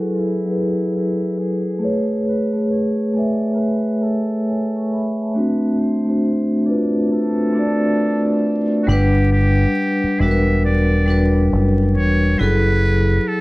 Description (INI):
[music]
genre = hip hop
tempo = 68 BPM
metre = 4/4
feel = swing 62% on 16ths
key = unclear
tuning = A4 = 438 Hz
[part]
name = trumpet with metal mute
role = melody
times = 0.0-13.4 s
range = E4 to E5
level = -27 LUFS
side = right 1 dB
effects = none
[part]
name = vibraphone with hard mallets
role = accompaniment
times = 0.0-13.4 s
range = F#3 to C#6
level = -17 LUFS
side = equal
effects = none
[part]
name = deep dub fingered electric bass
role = bass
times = 8.9-13.2 s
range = E1 to G1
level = -16 LUFS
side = equal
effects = transformer saturation
[sound]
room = light reverb, small room ambience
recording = worn, warbling old tape, cassette tape, vinyl crackle, warbly pitch drift, low-pass filter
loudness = -16 LUFS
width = side -20 dB against mid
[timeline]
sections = 0.0-8.9 A section; 8.9-13.4 B section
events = filter sweep 0.0-8.9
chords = 0.0 F#m9; 1.8 Amaj9; 5.3 D7/A; 8.9 Gmaj7; 12.4 F#m9